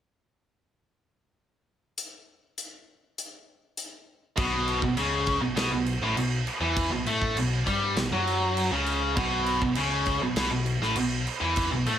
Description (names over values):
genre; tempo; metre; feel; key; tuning
hard rock; 100 BPM; 4/4; straight; unclear; A4 = 441 Hz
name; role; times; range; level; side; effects
big rock drum kit; drums; 2.0-12.0 s; crash cymbal, hi-hat, kick drum, snare drum; -31 LUFS; right 1 dB; none
tight distorted guitar; riff; 4.4-12.0 s; A2 to A3; -26 LUFS; equal; distortion
overdriven picked electric bass; bass; 4.4-12.0 s; A1 to A2; -32 LUFS; equal; none
room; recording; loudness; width
light reverb, small room ambience; none; -24 LUFS; side -10 dB against mid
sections
2.0-4.4 A section; 4.4-12.0 B section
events
none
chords
2.0 N.C.; 4.4 B5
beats
| 1.97 2.57 3.17 3.77 | 4.37 4.97 5.57 6.17 | 6.77 7.37 7.97 8.57 | 9.17 9.77 10.37 10.97 | 11.57